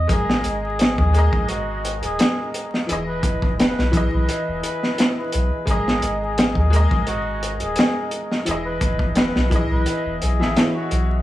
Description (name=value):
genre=trip hop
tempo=86 BPM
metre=4/4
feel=swing 54% on 16ths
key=G# minor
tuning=A4 = 439 Hz
part: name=trumpet with cup mute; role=melody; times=0.0-11.2 s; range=F#4 to B4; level=-26 LUFS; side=left 1 dB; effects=tape echo
part: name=soft dub sub bass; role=bass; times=0.0-11.2 s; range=D#1 to D#2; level=-22 LUFS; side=equal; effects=tube saturation
part: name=bright upright piano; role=accompaniment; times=0.1-11.2 s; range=E3 to E5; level=-26 LUFS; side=left 1 dB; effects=harmonic tremolo, tape echo
part: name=crunchy breakbeat drum kit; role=drums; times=0.1-11.1 s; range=hi-hat, kick drum, snare drum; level=-20 LUFS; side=equal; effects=none
room=small room ambience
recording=vinyl crackle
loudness=-18 LUFS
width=side -14 dB against mid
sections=0.0-11.2 A section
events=none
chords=0.1 G#sus2; 2.9 Emaj7; 5.7 G#sus2; 8.5 Emaj7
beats=| 0.10 0.79 1.49 2.19 | 2.89 3.58 4.28 4.98 | 5.68 6.38 7.07 7.77 | 8.47 9.17 9.86 10.56